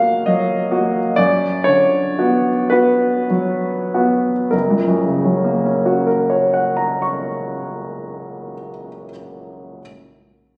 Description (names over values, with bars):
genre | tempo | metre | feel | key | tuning
classical, romantic nocturne for solo piano | 30-46 BPM (dotted quarters) | 6/8 | rubato | F# major | A4 = 437 Hz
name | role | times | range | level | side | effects
warm concert grand piano | solo | 0.0-9.8 s | F#1 to C#6 | -18 LUFS | equal | none
room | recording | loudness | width
moderate scoring stage reverb, RT60 1.5 s | recorded on a phone in the room, club reverb, compression | -17 LUFS | mono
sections
0.0-4.5 A section; 4.5-7.6 B section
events
slowing down 0.0-4.5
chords
0.0 F#; 1.2 Bm/F#; 4.5 F#